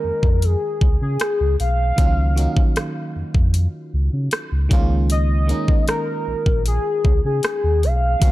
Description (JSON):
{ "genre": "contemporary R&B", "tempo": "77 BPM", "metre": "4/4", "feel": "straight", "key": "Db mixolydian", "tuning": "A4 = 438 Hz", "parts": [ { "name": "warm velvety synth lead", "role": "melody", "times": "0.0-8.3 s", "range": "Ab4 to F5", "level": "-23 LUFS", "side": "left 2 dB", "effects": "chorus, digital delay" }, { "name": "FM electric piano", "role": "accompaniment", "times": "0.0-8.3 s", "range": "Eb3 to Ab4", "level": "-28 LUFS", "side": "right 2 dB", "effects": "chorus" }, { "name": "sub bass with octave", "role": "bass", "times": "0.0-8.3 s", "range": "Bb1 to Db3", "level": "-19 LUFS", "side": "equal", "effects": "none" }, { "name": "trap drum kit", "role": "drums", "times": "0.2-8.3 s", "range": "hi-hat, kick drum, rim click", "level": "-18 LUFS", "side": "equal", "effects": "none" } ], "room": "little or no reverb", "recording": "dark, warm production", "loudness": "-17 LUFS", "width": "side -16 dB against mid", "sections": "0.0-8.3 A section", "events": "none", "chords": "0.0 Db69; 2.0 Ebm9/Db; 4.7 Db69", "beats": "0.42 1.20 | 1.98 2.76 3.54 4.32 | 5.10 5.88 6.66 7.44 | 8.22" }